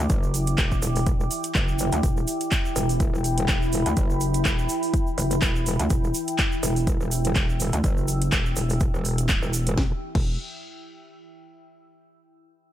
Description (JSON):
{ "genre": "bass house", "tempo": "124 BPM", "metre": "4/4", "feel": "swing 55% on 16ths", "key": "E minor", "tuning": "A4 = 440 Hz", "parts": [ { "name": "deep dark ambient pad", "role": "sustained chords", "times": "0.0-10.0 s", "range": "E4 to E6", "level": "-29 LUFS", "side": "equal", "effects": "chorus, built-in reverb, sidechain pumping" }, { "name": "metallic wobble bass", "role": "bass", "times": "0.0-10.4 s", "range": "E1 to D2", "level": "-24 LUFS", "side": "equal", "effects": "chorus, overdrive, sidechain pumping" }, { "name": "electronic kick drum", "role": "drums", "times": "0.1-10.2 s", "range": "none", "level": "-24 LUFS", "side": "equal", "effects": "none" }, { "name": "house drum kit", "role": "drums", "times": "0.1-10.2 s", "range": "crash cymbal, handclaps, hi-hat, snare drum", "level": "-29 LUFS", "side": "right 1 dB", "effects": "none" }, { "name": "tube shaker", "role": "percussion", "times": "0.1-9.8 s", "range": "none", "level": "-36 LUFS", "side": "right 4 dB", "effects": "none" } ], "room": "little or no reverb", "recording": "none", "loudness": "-21 LUFS", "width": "side -12 dB against mid", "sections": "0.0-9.8 A section; 9.8-11.7 B section", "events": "none", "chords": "0.0 Em", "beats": "| 0.10 0.58 1.07 1.55 | 2.03 2.52 3.00 3.48 | 3.97 4.45 4.94 5.42 | 5.90 6.39 6.87 7.36 | 7.84 8.32 8.81 9.29 | 9.78 10.26" }